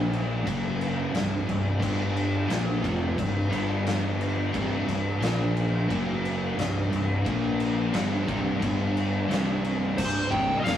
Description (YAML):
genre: stoner and doom metal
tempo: 88 BPM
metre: 4/4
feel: straight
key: unclear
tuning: A4 = 440 Hz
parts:
  - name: overdriven electric guitar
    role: riff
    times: 0.0-10.8 s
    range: C2 to Bb3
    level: -34 LUFS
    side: left 2 dB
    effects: none
  - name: thick fuzz guitar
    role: riff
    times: 0.0-10.8 s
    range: C2 to Bb3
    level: -35 LUFS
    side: left 4 dB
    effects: none
  - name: thick fuzz guitar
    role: riff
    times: 0.0-10.8 s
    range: C2 to Bb3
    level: -30 LUFS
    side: right 2 dB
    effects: distortion
  - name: fuzz fingered electric bass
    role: bass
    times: 0.0-10.8 s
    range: C1 to Bb1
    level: -30 LUFS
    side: left 1 dB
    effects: overdrive
  - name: oversized low-tuned drum kit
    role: drums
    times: 0.1-10.8 s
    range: crash cymbal, hi-hat, kick drum, snare drum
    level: -30 LUFS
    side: left 1 dB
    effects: none
  - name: fuzz lead guitar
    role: melody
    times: 10.0-10.8 s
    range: C5 to G5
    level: -26 LUFS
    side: equal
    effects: wah, distortion
room: light reverb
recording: rough rehearsal-room recording, small room ambience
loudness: -24 LUFS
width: side -10 dB against mid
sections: 0.0-10.0 A section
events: none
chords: 0.5 F#5; 1.1 C5; 1.8 G5; 2.5 C5; 3.5 G5; 4.5 C5; 5.2 Bb5; 5.9 F#5; 6.6 C5; 7.3 Bb5; 7.9 C5; 8.6 G5; 9.3 C5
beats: 0.46 1.14 | 1.82 2.50 3.17 3.85 | 4.53 5.21 5.89 6.57 | 7.25 7.93 8.61 9.29 | 9.97 10.66